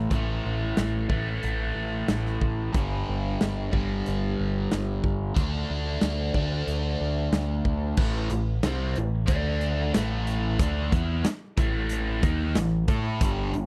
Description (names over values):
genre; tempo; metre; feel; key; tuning
classic rock; 92 BPM; 4/4; straight; unclear; A4 = 441 Hz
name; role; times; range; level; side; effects
biting overdriven guitar; riff; 0.0-13.7 s; G2 to A4; -31 LUFS; equal; phaser
overdriven picked electric bass; bass; 0.0-13.7 s; G1 to A2; -31 LUFS; equal; none
big rock drum kit; drums; 0.1-13.7 s; crash cymbal, hi-hat, kick drum, snare drum; -29 LUFS; equal; none
room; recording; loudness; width
little or no reverb; dry, close 1970s-style studio recording; -27 LUFS; mono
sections
0.0-8.0 A section; 8.0-13.7 B section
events
none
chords
0.0 A5; 2.7 G5; 5.4 D5; 8.0 A5; 9.3 D5; 10.0 A5